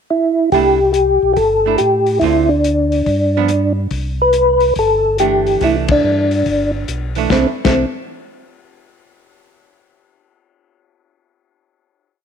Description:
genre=soul jazz organ trio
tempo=142 BPM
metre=4/4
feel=swing 65% on 8ths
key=C major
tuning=A4 = 440 Hz
part: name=percussive tonewheel organ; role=melody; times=0.1-7.9 s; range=C4 to B4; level=-14 LUFS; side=equal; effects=slow rotary speaker, chorus vibrato
part: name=archtop guitar, miked and amplified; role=accompaniment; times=0.5-7.8 s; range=D3 to F4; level=-21 LUFS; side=right 13 dB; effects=none
part: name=mellow tonewheel organ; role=bass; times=0.5-7.9 s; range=G1 to A2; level=-21 LUFS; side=equal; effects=overdrive, chorus vibrato, slow rotary speaker
part: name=warm soul drum kit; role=drums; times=0.5-7.7 s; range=crash cymbal, hi-hat, kick drum, ride cymbal, snare drum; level=-22 LUFS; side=left 4 dB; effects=none
room=light reverb, small room reverb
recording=1960s-style stereo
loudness=-12 LUFS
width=side -7 dB against mid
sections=0.0-0.5 pickup bar; 0.5-7.3 A section; 7.3-9.0 final chord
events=band accent 5.8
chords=0.0 N.C.; 0.5 C69; 2.2 Dm7; 3.1 G7; 3.9 C69

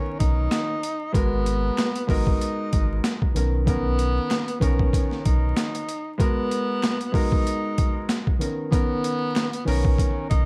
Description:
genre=hip hop, boom-bap hip-hop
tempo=95 BPM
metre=4/4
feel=swing 56% on 16ths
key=unclear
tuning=A4 = 438 Hz
part: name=breathy tenor saxophone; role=melody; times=0.0-10.5 s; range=B3 to D#4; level=-31 LUFS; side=equal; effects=high-pass filter, low-pass filter, plate reverb, tape echo
part: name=dark baby grand piano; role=accompaniment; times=0.0-10.5 s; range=D#3 to A#4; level=-30 LUFS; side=equal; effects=high-pass filter, low-pass filter
part: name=sub bass with octave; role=bass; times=0.2-5.5, 9.7-10.5 s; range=G#1 to B1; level=-26 LUFS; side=equal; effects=none
part: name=boom bap sampler-style drum kit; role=drums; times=0.2-10.5 s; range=hi-hat, kick drum, snare drum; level=-26 LUFS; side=equal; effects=overdrive
part: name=finger snaps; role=percussion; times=0.5-9.5 s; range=none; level=-45 LUFS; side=equal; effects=none
room=light reverb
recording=vinyl crackle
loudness=-23 LUFS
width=mono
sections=0.0-10.5 A section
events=none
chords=0.0 Bmaj9; 1.1 G#m9; 3.4 Bmaj9; 6.2 G#m9; 8.4 Bmaj9

